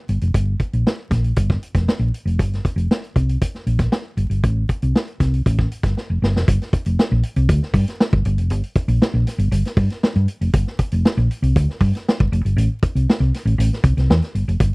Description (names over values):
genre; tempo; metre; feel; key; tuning
funk; 118 BPM; 4/4; straight; G minor; A4 = 436 Hz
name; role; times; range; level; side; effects
hollow-body short-scale fingered electric bass; bass; 0.1-14.7 s; F1 to G2; -17 LUFS; equal; none
vintage drum kit; drums; 0.1-14.7 s; hi-hat, kick drum, snare drum; -18 LUFS; equal; none
room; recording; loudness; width
little or no reverb; dry, close 1970s-style studio recording, vinyl crackle; -16 LUFS; side -32 dB against mid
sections
0.0-6.5 A section; 6.5-14.7 B section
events
drum fill 6.0-6.5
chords
none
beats
| 0.35 0.86 1.37 1.88 | 2.39 2.90 3.41 3.92 | 4.43 4.94 5.45 5.96 | 6.47 6.98 7.49 8.00 | 8.51 9.02 9.52 10.03 | 10.54 11.05 11.56 12.06 | 12.57 13.08 13.59 14.09 | 14.60